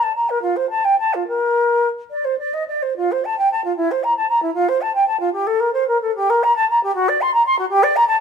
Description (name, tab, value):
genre	classical, baroque-style fantasia for unaccompanied flute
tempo	67-80 BPM (dotted quarters)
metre	6/8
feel	rubato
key	F major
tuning	A4 = 444 Hz
part	mellow concert flute	solo	0.0-8.2 s	E4 to C6	-16 LUFS	equal	none
room	moderate stone room reverb, RT60 1.3 s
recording	close, detailed microphones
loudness	-16 LUFS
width	side -6 dB against mid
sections	0.0-3.0 A section; 3.0-8.2 A section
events	none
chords	none